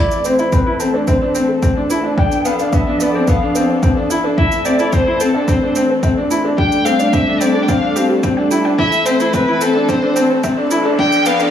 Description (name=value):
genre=piano and strings electronica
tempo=109 BPM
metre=4/4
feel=straight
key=A minor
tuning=A4 = 438 Hz
part: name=rich violin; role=melody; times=0.0-11.5 s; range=A4 to G5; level=-19 LUFS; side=left 1 dB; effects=low-pass filter, tape echo
part: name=muted studio string section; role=sustained chords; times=0.0-11.5 s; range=E3 to A4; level=-22 LUFS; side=equal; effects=sidechain pumping
part: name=wide unison pluck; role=arpeggios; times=0.0-11.5 s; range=G4 to A5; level=-27 LUFS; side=left 1 dB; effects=none
part: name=bright grand piano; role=riff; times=0.0-11.5 s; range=B3 to E4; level=-16 LUFS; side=left 1 dB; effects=tape echo
part: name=shaker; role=drums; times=0.1-11.5 s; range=none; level=-29 LUFS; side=right 6 dB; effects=high-pass filter on perc, high-pass filter on room
part: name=electronic kick drum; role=drums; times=0.5-11.1 s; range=none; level=-18 LUFS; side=equal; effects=none
part: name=riser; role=sound effects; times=10.1-11.5 s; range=none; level=-30 LUFS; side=left 1 dB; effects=none
room=moderate echo chamber reverb, RT60 1.9 s, small room ambience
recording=high-pass filter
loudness=-13 LUFS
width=side -9 dB against mid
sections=0.0-11.5 A section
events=build-up 0.0-11.5; filter sweep on violin 0.0-11.5; filter sweep 0.0-11.5; riser 10.1-11.5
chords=0.0 Am; 2.2 Bm7b5; 4.4 Am; 6.6 Gsus2; 8.8 Am; 11.0 Bm7b5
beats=0.53 1.08 1.63 | 2.18 2.73 3.28 3.83 | 4.38 4.93 5.48 6.03 | 6.58 7.13 7.68 8.23 | 8.78 9.34 9.88 10.44 | 10.99